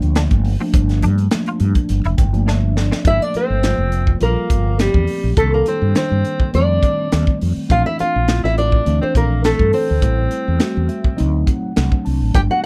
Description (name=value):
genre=electric jazz fusion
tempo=103 BPM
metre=4/4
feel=straight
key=G dorian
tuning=A4 = 442 Hz
part: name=nylon-string guitar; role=melody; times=0.0-12.7 s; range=G4 to G5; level=-22 LUFS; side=equal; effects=none
part: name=mellow tine electric piano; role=accompaniment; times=0.0-12.7 s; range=Eb3 to A5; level=-25 LUFS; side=equal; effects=analog chorus
part: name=mellow fretless electric bass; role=bass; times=0.0-12.5 s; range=F1 to G2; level=-20 LUFS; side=equal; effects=subtle chorus
part: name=crisp fusion drum kit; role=drums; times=0.0-12.5 s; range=hi-hat, kick drum, snare drum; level=-21 LUFS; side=equal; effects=none
part: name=clean electric guitar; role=stabs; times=0.2-3.0 s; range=C4 to F4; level=-32 LUFS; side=equal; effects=ensemble chorus
part: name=clear tenor saxophone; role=second line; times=3.1-12.6 s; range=G3 to G4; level=-28 LUFS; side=equal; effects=none
room=little or no reverb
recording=none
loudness=-17 LUFS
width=mono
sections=0.0-3.1 A section; 3.1-12.7 B section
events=tine electric piano fill 1.9-3.1, 10.6-12.3; drum fill 2.5-3.1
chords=0.0 Gm9; 5.4 Cm7; 6.5 F7; 7.7 Bbmaj9#11; 10.0 Am7; 11.2 D7b9